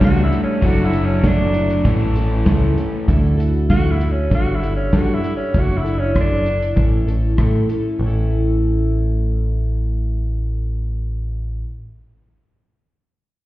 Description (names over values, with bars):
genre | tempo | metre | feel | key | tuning
folk rock and heartland rock | 98 BPM | 4/4 | straight | A mixolydian | A4 = 440 Hz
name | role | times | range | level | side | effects
bright tenor saxophone | melody | 0.0-6.8 s | C#4 to F#4 | -23 LUFS | right 1 dB | none
picked plugged-in twelve-string acoustic guitar | accompaniment | 0.0-11.8 s | A2 to A4 | -25 LUFS | left 2 dB | none
crunchy overdriven guitar | riff | 0.0-3.1 s | A2 to A4 | -22 LUFS | equal | spring reverb
picked electric bass | bass | 0.0-11.6 s | F#1 to A2 | -18 LUFS | equal | none
natural country drum kit | drums | 0.0-7.8 s | hi-hat, kick drum, rim click, snare drum | -19 LUFS | equal | none
room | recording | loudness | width
light reverb | heard muffled through a wall, stone room reverb, EQ | -16 LUFS | side -16 dB against mid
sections
0.0-8.0 A section; 8.0-10.5 B section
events
tenor saxophone solo 0.0-8.0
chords
0.0 Gsus2; 0.6 Dadd9/F#; 1.9 A; 3.1 Dadd9; 4.3 Gsus2; 5.5 Dadd9/F#; 6.8 A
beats
0.01 | 0.62 1.24 1.85 2.46 | 3.08 3.69 4.31 4.92 | 5.54 6.15 6.77 7.38 | 8.00 8.61 9.23 9.84